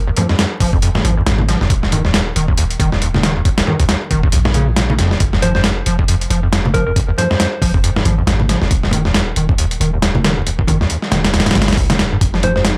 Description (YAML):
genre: breakbeat, breaks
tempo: 137 BPM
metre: 4/4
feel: swing 58% on 16ths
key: F minor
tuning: A4 = 440 Hz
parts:
  - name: warm 808-style bass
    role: bass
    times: 0.0-12.8 s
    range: Eb1 to Bb1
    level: -21 LUFS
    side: equal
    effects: tube saturation
  - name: overdriven acid bass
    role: riff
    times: 0.1-12.7 s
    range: Db2 to F3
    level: -21 LUFS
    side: equal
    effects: subtle chorus, delay
  - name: dusty soul sampler-style drum kit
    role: drums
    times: 0.2-12.8 s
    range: hi-hat, kick drum, snare drum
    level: -19 LUFS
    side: equal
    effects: overdrive
  - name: congas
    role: percussion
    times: 0.2-12.5 s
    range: none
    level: -24 LUFS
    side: equal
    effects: none
  - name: soft struck synth lead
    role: melody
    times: 5.4-7.8, 12.4-12.6 s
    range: Bb4 to C5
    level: -24 LUFS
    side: equal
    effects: chorus, telephone sound, delay
  - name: warbly tape-like pad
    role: sustained chords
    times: 12.4-12.8 s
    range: F3 to Ab4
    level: -28 LUFS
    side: equal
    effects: chorus, built-in reverb, vintage 12-bit sampler grit, sidechain pumping
room: little or no reverb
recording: vinyl crackle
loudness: -15 LUFS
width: mono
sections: 0.0-12.8 A section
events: filter sweep on acid bass 0.0-12.8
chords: 0.0 Fm; 1.7 Eb5; 5.2 Fm; 8.7 N.C.; 12.2 Fm9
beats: 0.39 0.82 1.26 | 1.70 2.14 2.58 3.02 | 3.45 3.89 4.33 4.77 | 5.21 5.64 6.08 6.52 | 6.96 7.39 7.83 8.27 | 8.71 9.15 9.58 10.02 | 10.46 10.90 11.34 11.77 | 12.21 12.65